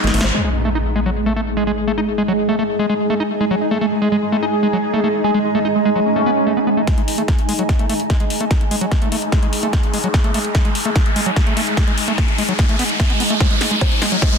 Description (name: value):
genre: psychedelic trance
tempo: 147 BPM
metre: 4/4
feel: straight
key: unclear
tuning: A4 = 442 Hz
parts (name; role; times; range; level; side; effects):
- wide unison lead; melody; 0.0-0.3, 3.6-6.8 s; G#3 to G#4; -21 LUFS; right 1 dB; phaser, sidechain pumping, ping-pong delay
- swarming drone; sustained chords; 0.0-14.4 s; G#3 to G#4; -24 LUFS; left 2 dB; built-in reverb, sidechain pumping
- overdriven acid bass; riff; 0.0-14.4 s; F#3 to D#4; -22 LUFS; left 1 dB; distortion, auto-pan, sidechain pumping, ping-pong delay
- big-room dance drum kit; drums; 0.0-0.3, 6.9-14.4 s; bongos, hi-hat, ride cymbal, snare drum; -24 LUFS; left 1 dB; low-pass filter on hats, low-pass filter on cymbals, low-pass filter on perc, soft clipping on snare, low-pass filter on snare
- granular cloud pad; texture; 0.0-14.4 s; G#3 to C#6; -23 LUFS; right 2 dB; built-in reverb, sidechain pumping
- impact and riser; sound effects; 0.3-2.0, 8.1-14.4 s; none; -23 LUFS; equal; none
- electronic kick drum; drums; 6.9-14.3 s; none; -16 LUFS; equal; none
room: light reverb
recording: dense, heavily limited modern master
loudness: -15 LUFS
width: side -6 dB against mid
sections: 0.3-6.9 A section; 6.9-14.4 B section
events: break 0.0-0.3; drum fill 0.0-0.3, 6.9-14.4; band accent 0.2; impact 0.3-2.0; build-up 6.9-14.4; filter sweep on synth drone 6.9-14.4; riser 8.1-14.4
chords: 0.3 G#5